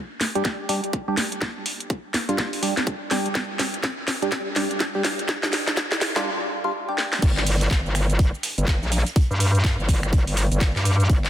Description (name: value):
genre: bass house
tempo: 124 BPM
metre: 4/4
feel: swing 60% on 16ths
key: G phrygian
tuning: A4 = 441 Hz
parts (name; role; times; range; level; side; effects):
- garage drum kit; drums; 0.2-11.3 s; crash cymbal, finger snaps, handclaps, hi-hat, shaker, snare drum; -25 LUFS; equal; none
- percussive organ stab; stabs; 0.4-7.2 s; G3 to G4; -27 LUFS; right 1 dB; chorus, phaser, sidechain pumping, digital delay
- electronic kick drum; drums; 0.4-11.2 s; none; -21 LUFS; equal; high-pass filter on kick, high-pass filter on room
- metallic wobble bass; bass; 7.2-11.3 s; G1 to G2; -21 LUFS; equal; chorus, sidechain pumping
- raw garage drum kit; drums; 7.2-11.2 s; hi-hat, snare drum; -38 LUFS; right 2 dB; none
room: moderate lush hall reverb, RT60 2.1 s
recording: dense, heavily limited modern master, high-pass filter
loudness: -20 LUFS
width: side -11 dB against mid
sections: 0.0-7.2 A section; 7.2-11.3 B section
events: build-up 0.0-7.2; drum fill 0.0-6.3, 7.0; drop 7.2-11.3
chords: 0.0 G5; 7.2 N.C.